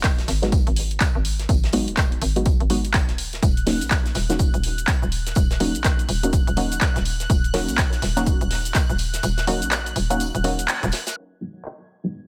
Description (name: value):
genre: deep house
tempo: 124 BPM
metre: 4/4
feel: swing 60% on 16ths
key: Eb minor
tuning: A4 = 440 Hz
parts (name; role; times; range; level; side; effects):
- filtered dub chord stab; stabs; 0.0-12.3 s; Gb3 to Gb4; -28 LUFS; equal; phaser, sidechain pumping, tape echo
- hollow knocking FM bass; bass; 0.0-10.9 s; Eb1 to Bb1; -28 LUFS; equal; sidechain pumping
- electronic kick drum; drums; 0.0-8.9 s; none; -23 LUFS; equal; none
- punchy analog drum machine; drums; 0.0-11.8 s; crash cymbal, handclaps, hi-hat, shaker; -29 LUFS; equal; none
- tight metal drum kit; drums; 0.0-11.2 s; hi-hat, snare drum, tambourine; -36 LUFS; equal; sidechain pumping on hats, high-pass filter on hats, high-pass filter on snare, sidechain pumping on perc, high-pass filter on perc, high-pass filter on room
- analog string pad; texture; 3.4-12.3 s; Gb6 to Ab6; -35 LUFS; equal; ensemble chorus
room: studio ambience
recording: low-pass filter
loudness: -22 LUFS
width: mono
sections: 0.0-11.2 A section; 11.2-12.3 B section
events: kick drops out 9.2-11.2; band accent 10.7; filter sweep on synth stab 11.2-12.3; filter sweep 11.2-12.3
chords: 0.0 Abm7; 3.2 Ebm7; 11.2 Abm7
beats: 0.04 0.52 1.01 | 1.49 1.98 2.46 2.94 | 3.43 3.91 4.39 4.88 | 5.36 5.85 6.33 6.81 | 7.30 7.78 8.27 8.75 | 9.23 9.72 10.20 10.69 | 11.17 11.65 12.14